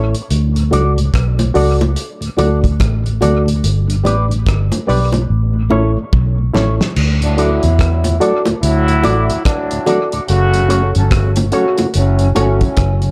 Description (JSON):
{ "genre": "roots reggae", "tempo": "72 BPM", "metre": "4/4", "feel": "swing 61% on 16ths", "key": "D major", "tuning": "A4 = 440 Hz", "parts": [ { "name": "electric guitar with an envelope filter", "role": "accompaniment", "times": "0.0-12.6 s", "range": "C#4 to D5", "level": "-27 LUFS", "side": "equal", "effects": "dub echo, plate reverb" }, { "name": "reed electric piano", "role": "stabs", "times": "0.0-12.6 s", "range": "E4 to D5", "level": "-20 LUFS", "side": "equal", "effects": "plate reverb" }, { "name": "vintage muted fingered electric bass", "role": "bass", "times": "0.0-13.1 s", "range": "F#1 to E2", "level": "-17 LUFS", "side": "equal", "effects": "none" }, { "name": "mellow tonewheel organ", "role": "accompaniment", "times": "0.1-13.1 s", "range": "D2 to D4", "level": "-26 LUFS", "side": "equal", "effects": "none" }, { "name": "cloth-damped thuddy drum kit", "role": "drums", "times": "0.1-13.1 s", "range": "crash cymbal, hi-hat, kick drum, rim click, snare drum", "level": "-22 LUFS", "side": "equal", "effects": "none" }, { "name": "bongos", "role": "percussion", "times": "0.7-12.6 s", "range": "none", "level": "-23 LUFS", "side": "equal", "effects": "none" }, { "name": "warm trombone section", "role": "second line", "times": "7.2-13.1 s", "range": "A2 to A4", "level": "-21 LUFS", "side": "equal", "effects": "dub echo, plate reverb" } ], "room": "light reverb", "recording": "dark, warm production", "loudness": "-14 LUFS", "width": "mono", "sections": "0.0-7.0 A section; 7.0-13.1 B section", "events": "drum fill 5.3-7.0", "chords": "0.3 D; 3.6 G; 5.3 A; 7.0 D; 10.3 F#m" }